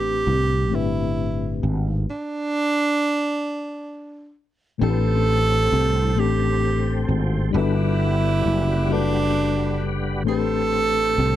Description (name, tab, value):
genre	R&B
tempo	44 BPM (dotted quarters)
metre	6/8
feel	straight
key	A dorian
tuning	A4 = 440 Hz
part	breathy tenor saxophone	melody	0.0-11.4 s	D4 to A4	-23 LUFS	right 3 dB	slapback echo
part	mellow reed electric piano	accompaniment	0.0-11.4 s	A2 to B4	-25 LUFS	left 8 dB	fast tremolo
part	sustaining fretless electric bass	bass	0.0-11.4 s	F#1 to C2	-22 LUFS	equal	ensemble chorus
part	tonewheel organ	sustained chords	4.8-11.4 s	G3 to B4	-32 LUFS	right 1 dB	chorus vibrato, slow rotary speaker
room	little or no reverb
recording	dry, close 1970s-style studio recording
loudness	-19 LUFS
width	side -12 dB against mid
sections	0.0-4.8 A section; 4.8-11.4 B section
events	stop 2.1-4.8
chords	0.0 Am11; 2.1 N.C.; 4.8 Am11; 7.5 Gmaj7; 10.3 Am11